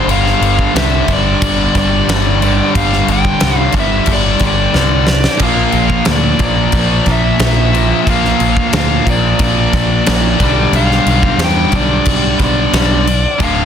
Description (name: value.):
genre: hard rock.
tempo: 90 BPM.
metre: 4/4.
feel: straight.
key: unclear.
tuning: A4 = 440 Hz.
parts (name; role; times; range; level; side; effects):
dark smooth lead guitar; melody; 0.0-13.7 s; D5 to G5; -18 LUFS; left 1 dB; overdrive.
distorted electric guitar; riff; 0.0-13.7 s; D2 to Bb3; -19 LUFS; left 11 dB; distortion.
high-gain distorted guitar; riff; 0.0-13.7 s; D2 to Bb3; -20 LUFS; equal; distortion.
overdriven semi-hollow guitar; riff; 0.0-13.7 s; D2 to Bb3; -20 LUFS; right 11 dB; none.
picked electric bass; bass; 0.1-13.7 s; D1 to E2; -16 LUFS; equal; none.
huge arena drum kit; drums; 0.1-13.6 s; crash cymbal, kick drum, snare drum; -16 LUFS; equal; none.
room: studio ambience.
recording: dense, heavily limited modern master.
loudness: -10 LUFS.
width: side -8 dB against mid.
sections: 0.0-13.7 A section.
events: drum fill 4.7-5.4.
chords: 0.0 G5; 5.4 Bb; 10.4 G/B.